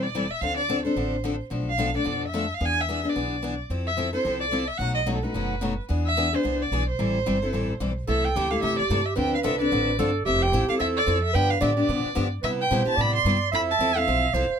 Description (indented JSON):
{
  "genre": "acoustic string swing (jazz manouche)",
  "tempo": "220 BPM",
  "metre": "4/4",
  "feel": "swing 58% on 8ths",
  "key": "A minor, C major from 8.1 s",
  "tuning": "A4 = 439 Hz",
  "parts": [
    { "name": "warm violin", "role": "melody", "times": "0.0-14.5 s", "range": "A4 to C6", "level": "-26 LUFS", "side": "right 1 dB", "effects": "none" },
    { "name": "picked steel-string acoustic guitar", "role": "accompaniment", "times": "0.0-14.5 s", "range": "B2 to A4", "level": "-27 LUFS", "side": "left 3 dB", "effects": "none" },
    { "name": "upright bass", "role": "bass", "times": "0.0-14.5 s", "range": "E1 to C3", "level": "-28 LUFS", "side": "equal", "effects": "none" },
    { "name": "mellow clarinet", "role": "second line", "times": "8.1-14.6 s", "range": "G4 to E5", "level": "-27 LUFS", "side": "right 6 dB", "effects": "none" }
  ],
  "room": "light reverb",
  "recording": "close, detailed microphones",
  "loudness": "-22 LUFS",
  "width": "side -7 dB against mid",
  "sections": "0.0-8.1 A section; 8.1-14.6 B section",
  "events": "none",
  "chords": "0.4 Dm7; 1.5 Bm7b5; 2.6 E7; 3.7 Fmaj7; 4.8 B7; 5.9 E7; 7.0 Am7; 8.1 C6; 9.2 Dm7; 10.3 Fmaj7; 11.3 G7; 12.4 Cmaj7; 13.5 Fmaj7"
}